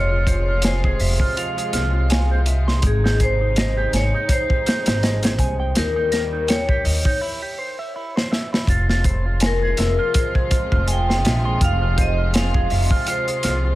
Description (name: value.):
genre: trip hop.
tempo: 82 BPM.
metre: 4/4.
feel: swing 56% on 16ths.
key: F minor.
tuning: A4 = 441 Hz.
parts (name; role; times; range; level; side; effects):
vibraphone with medium hard mallets; melody; 0.0-13.8 s; Ab4 to G5; -24 LUFS; left 1 dB; vintage 12-bit sampler grit, dub echo.
warm studio string section; sustained chords; 0.0-13.8 s; C3 to F4; -30 LUFS; left 2 dB; vintage 12-bit sampler grit.
electric guitar with an envelope filter; arpeggios; 0.0-13.8 s; Eb4 to C6; -28 LUFS; right 3 dB; vintage 12-bit sampler grit, tape echo.
upright bass; bass; 0.0-13.8 s; F1 to Eb2; -20 LUFS; equal; tube saturation.
crunchy breakbeat drum kit; drums; 0.3-13.6 s; hi-hat, kick drum, snare drum; -21 LUFS; equal; none.
room: light reverb, studio reverb.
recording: none.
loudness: -17 LUFS.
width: side -16 dB against mid.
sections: 0.0-8.7 A section; 8.7-13.8 B section.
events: break 7.2-8.7; drum fill 8.1-8.7.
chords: 0.0 Fm; 2.8 Abmaj7; 5.8 Eb; 7.2 C; 8.7 Fm.